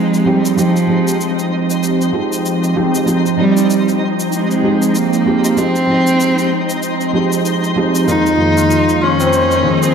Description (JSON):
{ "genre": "organic downtempo", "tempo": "96 BPM", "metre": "4/4", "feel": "swing 58% on 16ths", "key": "F minor", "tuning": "A4 = 440 Hz", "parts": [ { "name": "dark cello", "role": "melody", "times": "0.0-9.9 s", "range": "F3 to Eb4", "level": "-16 LUFS", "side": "equal", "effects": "vintage 12-bit sampler grit, ping-pong delay" }, { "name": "felt-muted upright piano", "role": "accompaniment", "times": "0.0-9.9 s", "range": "F2 to Ab4", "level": "-18 LUFS", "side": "right 2 dB", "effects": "low-pass filter, tape echo" }, { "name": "airy breathy pad", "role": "sustained chords", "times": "0.0-9.9 s", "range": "F2 to G4", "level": "-18 LUFS", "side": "right 1 dB", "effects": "chorus, vintage 12-bit sampler grit" }, { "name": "santur", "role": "arpeggios", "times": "0.0-1.1, 8.1-9.9 s", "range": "C4 to C5", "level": "-18 LUFS", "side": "left 2 dB", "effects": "tape echo" }, { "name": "twinkling granular texture", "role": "texture", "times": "0.0-9.9 s", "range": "Eb4 to C5", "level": "-22 LUFS", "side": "left 1 dB", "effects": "built-in reverb" }, { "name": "cabasa", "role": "drums", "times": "0.1-9.9 s", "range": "none", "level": "-27 LUFS", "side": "left 3 dB", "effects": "none" } ], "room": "wet concert hall reverb, RT60 1.9 s, digital ambience", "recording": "none", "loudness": "-12 LUFS", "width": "side -6 dB against mid", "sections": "0.0-9.9 A section", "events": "none", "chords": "0.0 Fm9; 8.1 Fm7" }